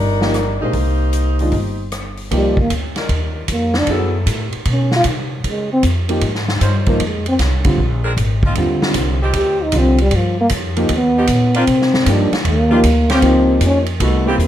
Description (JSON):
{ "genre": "jazz, big band swing", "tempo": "154 BPM", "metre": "4/4", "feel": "swing 66% on 8ths", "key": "C minor", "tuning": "A4 = 440 Hz", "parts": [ { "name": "dark saxophone section", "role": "melody", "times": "0.0-1.9 s", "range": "G3 to C5", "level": "-21 LUFS", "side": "left 2 dB", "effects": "none" }, { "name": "upright bass", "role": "bass", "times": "0.0-14.5 s", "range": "G1 to Db3", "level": "-18 LUFS", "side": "equal", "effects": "none" }, { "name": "warm grand piano", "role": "accompaniment", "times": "0.2-14.5 s", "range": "D3 to Bb4", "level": "-19 LUFS", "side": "equal", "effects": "none" }, { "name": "swinging big-band drum kit", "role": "drums", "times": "0.2-14.5 s", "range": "hi-hat, kick drum, ride cymbal, rim click, snare drum", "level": "-21 LUFS", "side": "equal", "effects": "none" }, { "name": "trombone with bucket mute", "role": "melody", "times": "2.4-13.8 s", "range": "F3 to G4", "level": "-16 LUFS", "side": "equal", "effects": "none" }, { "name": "clear saxophone section", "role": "sustained chords", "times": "3.0-14.4 s", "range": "D#3 to C5", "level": "-23 LUFS", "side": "right 1 dB", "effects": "none" } ], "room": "light reverb", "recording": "none", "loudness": "-14 LUFS", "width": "side -11 dB against mid", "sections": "0.0-2.3 A section; 2.3-14.5 B section", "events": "trombone solo 2.3-14.5", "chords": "0.0 Cm9; 2.3 Cm11; 3.9 F#m7; 4.7 Dbmaj7(no3); 5.4 Dbmaj9; 7.0 F5; 7.8 Bb7sus2; 8.6 Eb69; 10.1 G7alt; 11.7 Cm11; 13.2 Gm7b5", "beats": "0.35 | 0.75 1.14 1.53 1.93 | 2.32 2.71 3.10 3.49 | 3.88 4.28 4.67 5.06 | 5.45 5.84 6.23 6.62 | 7.01 7.40 7.79 8.18 | 8.56 8.95 9.34 9.73 | 10.12 10.51 10.90 11.29 | 11.68 12.06 12.45 12.84 | 13.23 13.62 14.00 14.39" }